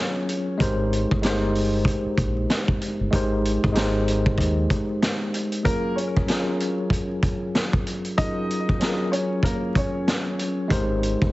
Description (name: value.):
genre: hip hop, boom-bap hip-hop.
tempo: 95 BPM.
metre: 4/4.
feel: swing 60% on 16ths.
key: unclear.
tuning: A4 = 441 Hz.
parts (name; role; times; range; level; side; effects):
warm upright piano; melody; 0.0-0.6, 5.6-10.7 s; A#3 to D#5; -29 LUFS; left 1 dB; high-pass filter, low-pass filter, ping-pong delay.
tine electric piano; accompaniment; 0.0-11.3 s; F#3 to B#4; -25 LUFS; equal; overdrive, fast stereo tremolo, cassette tape, high-pass filter, low-pass filter.
vintage drum kit; drums; 0.3-11.3 s; hi-hat, kick drum, snare drum; -24 LUFS; equal; none.
deep dub fingered electric bass; bass; 0.6-4.7, 10.7-11.3 s; G1 to D#2; -25 LUFS; equal; none.
room: small room ambience.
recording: heavily compressed radio sound, multiband compression, vinyl crackle, nothing above 8.0 kHz.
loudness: -21 LUFS.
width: side -18 dB against mid.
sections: 0.0-11.3 A section.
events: none.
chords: 0.0 F#maj9; 0.6 G#maj9; 5.7 F#maj9; 10.7 G#maj9.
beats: | 0.60 1.23 1.86 2.50 | 3.13 3.76 4.39 5.02 | 5.65 6.28 6.92 7.55 | 8.18 8.81 9.44 10.07 | 10.71.